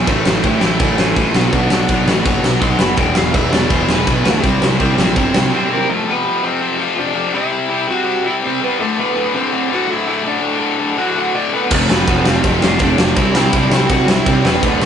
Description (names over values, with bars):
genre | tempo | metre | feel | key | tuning
punk rock | 165 BPM | 4/4 | straight | unclear | A4 = 440 Hz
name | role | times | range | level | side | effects
overdriven semi-hollow guitar | melody | 0.0-14.8 s | A3 to C6 | -20 LUFS | right 1 dB | none
cranked stack guitar | riff | 0.0-5.9, 11.7-14.9 s | D2 to C4 | -22 LUFS | right 6 dB | overdrive
tight distorted guitar | riff | 0.0-14.9 s | D2 to C4 | -19 LUFS | left 4 dB | distortion
fuzz picked electric bass | bass | 0.0-5.5, 11.7-14.9 s | D1 to D2 | -18 LUFS | equal | overdrive
high-gain distorted guitar | riff | 0.1-5.9, 11.7-14.9 s | D2 to C5 | -26 LUFS | right 2 dB | none
big rock drum kit | drums | 0.1-5.4, 11.7-14.9 s | crash cymbal, kick drum, ride cymbal, snare drum | -16 LUFS | equal | none
room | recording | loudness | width
light reverb | rough rehearsal-room recording, nothing above 10.5 kHz | -13 LUFS | side -8 dB against mid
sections
0.0-5.9 A section; 5.9-14.9 B section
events
overdriven electric guitar solo 0.0-5.9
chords
0.1 A; 1.3 Bm; 3.0 E; 4.4 C7; 5.9 F; 7.3 C; 8.8 D; 11.7 F; 13.2 C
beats
| 0.07 0.44 0.80 1.16 | 1.52 1.89 2.25 2.61 | 2.98 3.34 3.71 4.07 | 4.43 4.80 5.16 5.53 | 5.89 6.25 6.62 6.98 | 7.34 7.71 8.07 8.44 | 8.80 9.16 9.53 9.89 | 10.26 10.62 10.98 11.35 | 11.71 12.08 12.44 12.81 | 13.17 13.54 13.90 14.27 | 14.63